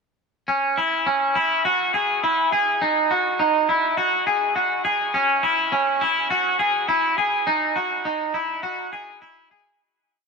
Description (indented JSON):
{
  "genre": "dream pop",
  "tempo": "103 BPM",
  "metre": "4/4",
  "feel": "straight",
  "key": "C# minor",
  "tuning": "A4 = 436 Hz",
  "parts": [
    { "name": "twangy electric guitar", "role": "solo", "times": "0.5-9.8 s", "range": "C#4 to G#4", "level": "-19 LUFS", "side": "equal", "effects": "wide subtle chorus, tape echo" }
  ],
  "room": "wet huge ambient reverb, RT60 6.8 s",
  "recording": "none",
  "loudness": "-19 LUFS",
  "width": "side -4 dB against mid",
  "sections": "0.5-9.8 A section",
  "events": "fade-out 7.5-9.8",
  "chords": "none"
}